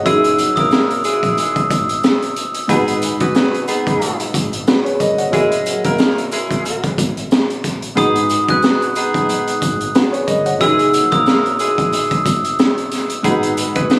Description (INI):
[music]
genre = hip hop, boom-bap hip-hop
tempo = 91 BPM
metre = 4/4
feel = swing 56% on 16ths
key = unclear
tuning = A4 = 440 Hz
[part]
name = warm upright piano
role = accompaniment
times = 0.0-14.0 s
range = F#3 to F#5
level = -20 LUFS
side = equal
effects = high-pass filter, low-pass filter
[part]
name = glockenspiel with brass mallets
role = melody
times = 0.1-0.9, 8.0-11.4 s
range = D#6 to F#6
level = -18 LUFS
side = equal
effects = high-pass filter, low-pass filter, tape echo
[part]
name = clear saxophone section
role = stabs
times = 0.1-14.0 s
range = G#3 to B4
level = -20 LUFS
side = equal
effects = high-pass filter, low-pass filter, tape echo
[part]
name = smooth synth bass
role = bass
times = 0.1-13.9 s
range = F#1 to A#1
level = -26 LUFS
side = equal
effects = none
[part]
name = raw garage drum kit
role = drums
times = 0.1-14.0 s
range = hi-hat, kick drum, snare drum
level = -17 LUFS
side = equal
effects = none
[part]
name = sleigh bells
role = percussion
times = 0.1-14.0 s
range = none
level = -33 LUFS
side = right 1 dB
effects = none
[sound]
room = studio reverb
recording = recorded on a phone in the room, club reverb, vinyl crackle, compression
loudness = -13 LUFS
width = side -27 dB against mid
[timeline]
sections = 0.0-14.0 A section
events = none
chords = 0.1 F#13; 2.7 G#m7; 5.3 F#13; 8.0 G#m7; 10.6 F#13; 13.2 G#m7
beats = | 0.06 0.72 1.38 2.04 | 2.69 3.35 4.01 4.67 | 5.33 5.99 6.65 7.31 | 7.97 8.63 9.29 9.95 | 10.61 11.27 11.93 12.59 | 13.24 13.90